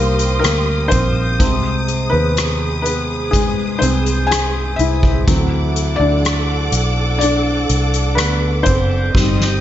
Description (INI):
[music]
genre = pop ballad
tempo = 62 BPM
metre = 4/4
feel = straight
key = unclear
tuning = A4 = 437 Hz
[part]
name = felt-muted upright piano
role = accompaniment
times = 0.0-9.6 s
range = C3 to Ab5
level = -18 LUFS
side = left 2 dB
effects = none
[part]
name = warm symphonic string section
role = sustained chords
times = 0.0-9.6 s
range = G4 to Eb6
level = -24 LUFS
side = right 2 dB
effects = none
[part]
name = vintage muted fingered electric bass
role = bass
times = 0.0-9.6 s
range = F#1 to Eb2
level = -18 LUFS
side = equal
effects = none
[part]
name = soft-mallet drum kit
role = drums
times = 0.2-9.6 s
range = hi-hat, kick drum, rim click, snare drum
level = -20 LUFS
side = equal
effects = none
[sound]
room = little or no reverb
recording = nothing above 7.6 kHz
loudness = -14 LUFS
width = side -12 dB against mid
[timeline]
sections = 0.0-9.6 A section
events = felt piano solo 0.0-9.6; drum fill 9.1-9.6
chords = 0.0 Cm7; 1.4 Ab/C; 5.3 D7